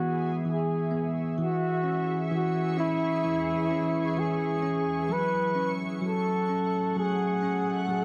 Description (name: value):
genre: pop ballad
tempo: 65 BPM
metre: 4/4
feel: straight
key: unclear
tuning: A4 = 438 Hz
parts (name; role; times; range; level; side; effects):
- mellow flugelhorn; melody; 0.0-8.0 s; E4 to B4; -31 LUFS; equal; none
- bell-like tine electric piano; accompaniment; 0.0-8.0 s; E3 to C#4; -31 LUFS; equal; phaser
- granular cloud pad; sustained chords; 0.0-8.0 s; E3 to C#6; -38 LUFS; equal; built-in reverb
room: moderate scoring stage reverb, RT60 1.7 s, small room ambience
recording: none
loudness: -28 LUFS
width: mono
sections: 0.0-8.0 A section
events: none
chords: 0.0 E; 1.4 C#m/E; 5.1 F#m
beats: 0.47 | 1.40 2.32 3.25 4.17 | 5.09 6.02 6.96 7.89